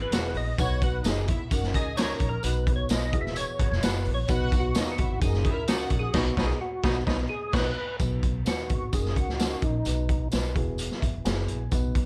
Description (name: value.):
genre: uptempo 1960s-style soul.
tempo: 130 BPM.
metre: 4/4.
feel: straight.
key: B major.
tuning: A4 = 440 Hz.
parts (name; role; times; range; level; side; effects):
percussive tonewheel organ; melody; 0.0-10.3 s; D#4 to E5; -35 LUFS; equal; chorus vibrato, slow rotary speaker.
dark upright piano; accompaniment; 0.0-12.1 s; B2 to G#5; -37 LUFS; equal; none.
upright bass; bass; 0.0-12.1 s; E1 to B2; -32 LUFS; equal; none.
edgy saxophone section; second line; 0.1-7.6 s; A#2 to F#4; -40 LUFS; equal; analog delay.
raw garage drum kit; drums; 0.1-12.1 s; crash cymbal, hi-hat, kick drum, snare drum; -30 LUFS; equal; none.
tambourine; percussion; 0.1-11.8 s; none; -44 LUFS; equal; none.
warm studio string section; second line; 0.6-7.7 s; D#4 to A#5; -39 LUFS; equal; none.
room: light reverb.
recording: dark, warm production.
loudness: -27 LUFS.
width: mono.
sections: 0.0-8.0 A section; 8.0-12.1 B section.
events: tonewheel organ solo 0.0-8.0; band accent 6.1-8.0; upright piano fill 10.8-11.7.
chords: 0.0 Eadd9; 0.6 B; 1.5 F#6; 2.4 B; 3.1 Eadd9; 4.3 B; 5.2 F#6; 6.1 B; 8.9 F#6; 9.9 B; 10.6 Eadd9.